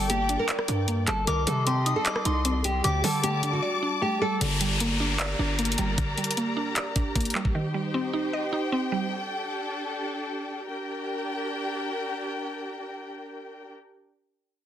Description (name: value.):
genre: hip hop, trap.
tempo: 153 BPM.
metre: 4/4.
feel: half-time.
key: G minor.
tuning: A4 = 436 Hz.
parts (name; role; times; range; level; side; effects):
nylon-string guitar; melody; 0.0-4.4 s; F#4 to Bb4; -29 LUFS; right 1 dB; low-pass filter, digital delay.
soft synth bell; second line; 0.0-4.4 s; G5 to Eb6; -32 LUFS; left 3 dB; chorus, digital delay.
mallet-like synth pluck; accompaniment; 0.0-9.1 s; D3 to Eb5; -30 LUFS; right 1 dB; chorus, low-pass filter.
warm symphonic string section; sustained chords; 0.0-13.7 s; G3 to D6; -32 LUFS; left 1 dB; none.
distorted 808-style bass; bass; 0.0-6.0 s; G1 to D3; -28 LUFS; equal; distortion.
trap drum kit; drums; 0.1-7.5 s; handclaps, hi-hat, kick drum, rim click; -27 LUFS; equal; none.
downlifter; sound effects; 4.4-7.5 s; none; -32 LUFS; left 2 dB; none.
room: light reverb.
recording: dense, heavily limited modern master.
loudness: -25 LUFS.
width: side -10 dB against mid.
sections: 0.0-4.4 A section; 4.4-10.7 B section; 10.7-13.8 C section.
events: silent gap 3.6-4.4.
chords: 0.0 Gm; 1.3 Cm; 2.8 Dsus4; 4.4 Gm; 7.5 Cm; 9.1 Dsus4; 10.7 Gm.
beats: 0.10 0.49 0.88 | 1.27 1.67 2.06 2.45 | 2.84 3.23 3.63 4.02 | 4.41 4.80 5.20 5.59 | 5.98 6.37 6.76 7.16 | 7.55 7.94 8.33 8.72 | 9.12 9.51 9.90 10.29 | 10.69 11.08 11.47 11.86 | 12.25 12.65 13.04 13.43.